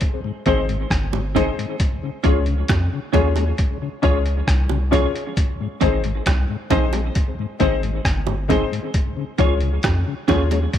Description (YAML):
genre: roots reggae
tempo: 67 BPM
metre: 4/4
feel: straight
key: Ab major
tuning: A4 = 444 Hz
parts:
  - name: trip hop sampler-style drum kit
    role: drums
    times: 0.0-10.8 s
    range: hi-hat, kick drum, rim click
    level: -22 LUFS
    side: equal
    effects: overdrive
  - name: mellow tonewheel organ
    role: accompaniment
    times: 0.2-10.6 s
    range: Ab2 to Db4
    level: -28 LUFS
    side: left 7 dB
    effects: chorus vibrato, slow rotary speaker, tape echo
  - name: clean electric guitar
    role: accompaniment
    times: 0.5-10.4 s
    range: C4 to Db5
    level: -26 LUFS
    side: right 12 dB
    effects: ensemble chorus, tape echo
  - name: warm upright piano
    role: stabs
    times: 0.5-10.6 s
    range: C4 to Db5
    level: -26 LUFS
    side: left 9 dB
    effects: none
  - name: soft dub sub bass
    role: bass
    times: 0.5-10.7 s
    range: G1 to F2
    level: -21 LUFS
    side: equal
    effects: none
  - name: bongos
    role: percussion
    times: 1.1-10.7 s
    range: none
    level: -30 LUFS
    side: right 11 dB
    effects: none
room: light reverb, digital ambience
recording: 1960s-style stereo with parts hard left and right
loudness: -18 LUFS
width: side -10 dB against mid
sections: 0.0-10.8 A section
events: none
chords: 0.0 Ab; 1.8 Db; 5.4 Ab; 8.9 Db